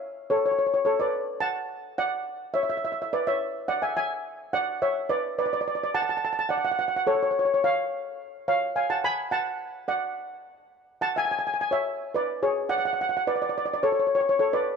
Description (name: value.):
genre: calypso.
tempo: 106 BPM.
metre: 4/4.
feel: straight.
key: F# minor.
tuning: A4 = 440 Hz.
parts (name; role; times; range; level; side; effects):
steel pan; solo; 0.0-14.8 s; G#4 to B5; -24 LUFS; equal; none.
room: moderate plate reverb, RT60 2.9 s.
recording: none.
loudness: -24 LUFS.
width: side -6 dB against mid.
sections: 0.0-14.8 A section.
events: none.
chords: 0.0 F#m; 2.3 E5; 4.5 Bm (rootless); 6.8 Aaug (rootless); 7.9 C#; 9.0 F#madd9; 11.3 C#5; 13.5 Aadd9.